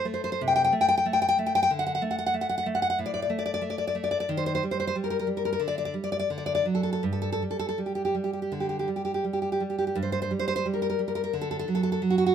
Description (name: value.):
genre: romantic piece for solo classical guitar.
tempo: 78-95 BPM.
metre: 4/4.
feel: rubato.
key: G minor.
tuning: A4 = 440 Hz.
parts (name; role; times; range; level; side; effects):
nylon-string guitar; solo; 0.0-12.3 s; G2 to G5; -24 LUFS; equal; none.
room: light reverb.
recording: minimal, uncompressed stereo recording.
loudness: -25 LUFS.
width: side -8 dB against mid.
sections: 0.0-10.0 A section; 10.0-12.3 A section.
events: none.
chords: 0.0 Am7/C; 1.7 D5; 4.3 Eb; 5.6 G5/D; 6.3 D; 7.0 G5; 10.0 N.C.; 11.3 D.